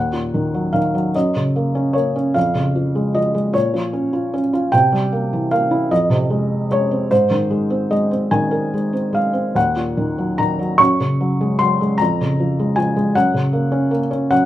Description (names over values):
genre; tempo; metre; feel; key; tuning
classical, lyrical solo piano; 50 BPM (dotted quarters); 6/8; uneven beats, rubato; unclear; A4 = 438 Hz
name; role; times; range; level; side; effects
felt-muted upright piano; solo; 0.0-14.5 s; Eb2 to Db6; -16 LUFS; equal; none
room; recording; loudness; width
moderate studio reverb, RT60 0.8 s; minimal, uncompressed stereo recording; -16 LUFS; side -13 dB against mid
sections
0.0-14.5 A section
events
none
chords
0.0 Ebm; 1.2 Gb; 2.4 Db/F; 3.5 Bbm; 4.7 C7; 5.9 Fm; 7.1 Abadd9; 9.6 Ebm; 10.8 Gbsus2; 12.0 Db/F; 13.2 Gb